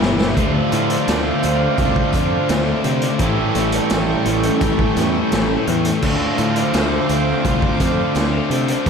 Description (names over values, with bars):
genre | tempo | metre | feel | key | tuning
rock, shoegaze and dream pop | 85 BPM | 4/4 | straight | D minor | A4 = 439 Hz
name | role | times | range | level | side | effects
chorused pulse-width pad | sustained chords | 0.0-8.9 s | G4 to D6 | -25 LUFS | right 1 dB | none
picked twelve-string acoustic guitar | arpeggios | 0.0-8.9 s | E3 to G4 | -27 LUFS | right 9 dB | ensemble chorus, tape echo
overdriven electric guitar | riff | 0.0-8.9 s | A2 to A4 | -24 LUFS | right 10 dB | reverse reverb
thick fuzz guitar | riff | 0.0-8.9 s | E2 to D4 | -21 LUFS | left 10 dB | distortion, lush chorus
tight distorted guitar | riff | 0.0-8.9 s | A2 to F4 | -26 LUFS | equal | distortion
picked electric bass | bass | 0.0-8.9 s | G1 to C3 | -23 LUFS | right 1 dB | none
raw garage drum kit | drums | 0.0-8.9 s | crash cymbal, hi-hat, kick drum, snare drum | -23 LUFS | equal | none
tambourine | percussion | 0.0-8.6 s | none | -42 LUFS | left 10 dB | none
room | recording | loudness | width
moderate plate reverb, RT60 3.2 s | dreamy mix soaked in reverb | -15 LUFS | side -6 dB against mid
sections
0.4-8.9 A section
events
drum fill 0.0-0.4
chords
0.4 Dm7; 3.2 A7; 6.0 Dm7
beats
| 0.37 1.08 1.78 2.49 | 3.20 3.91 4.62 5.33 | 6.03 6.74 7.45 8.16 | 8.86